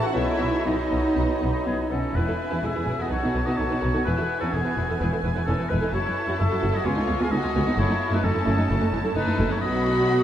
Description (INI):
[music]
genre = classical, dramatic, fast romantic movement for symphony orchestra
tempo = 128 BPM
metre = 4/4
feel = rubato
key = E major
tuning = A4 = 445 Hz
[part]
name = rich symphonic violin section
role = melody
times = 0.0-10.2 s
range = D#5 to B5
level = -35 LUFS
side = right 1 dB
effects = none
[part]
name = clear oboe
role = second line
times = 0.0-10.2 s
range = D#4 to E#5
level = -30 LUFS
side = left 2 dB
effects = none
[part]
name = hollow flute section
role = second line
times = 0.0-1.9 s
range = B5 to C#6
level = -38 LUFS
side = right 2 dB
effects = none
[part]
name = warm clarinet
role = second line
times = 0.0-1.7 s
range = D#4 to F#4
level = -34 LUFS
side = equal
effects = none
[part]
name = rich symphonic viola section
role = accompaniment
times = 0.0-10.2 s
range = F#3 to B4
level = -28 LUFS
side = right 2 dB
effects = none
[part]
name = warm bassoon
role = accompaniment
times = 0.0-1.9 s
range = E3 to F#3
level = -34 LUFS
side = right 2 dB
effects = none
[part]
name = rich symphonic cello section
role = bass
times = 0.0-10.2 s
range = C#2 to E4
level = -28 LUFS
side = equal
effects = none
[part]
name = rich symphonic violin section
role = second line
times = 0.1-10.2 s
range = B3 to A4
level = -30 LUFS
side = equal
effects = none
[part]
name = dark French horn section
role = sustained chords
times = 0.1-1.3 s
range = B3 to F#4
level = -38 LUFS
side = equal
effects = none
[part]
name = clear symphonic double bass section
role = bass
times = 0.2-10.2 s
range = E1 to C#2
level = -28 LUFS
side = equal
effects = none
[sound]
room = wet huge ambient reverb, RT60 7.3 s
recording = in a vast, echoing space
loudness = -21 LUFS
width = side -10 dB against mid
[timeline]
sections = 0.0-2.2 A section; 2.2-10.2 B section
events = none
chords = 0.1 B; 2.2 E; 3.1 B9; 4.1 E; 5.9 F#m7; 6.9 C#7; 7.8 F#m7; 9.6 B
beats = | 0.15 0.66 1.17 1.67 | 2.17 2.65 3.12 3.59 | 4.06 4.53 5.00 5.47 | 5.93 6.40 6.86 7.32 | 7.79 8.24 8.70 9.16 | 9.62 10.08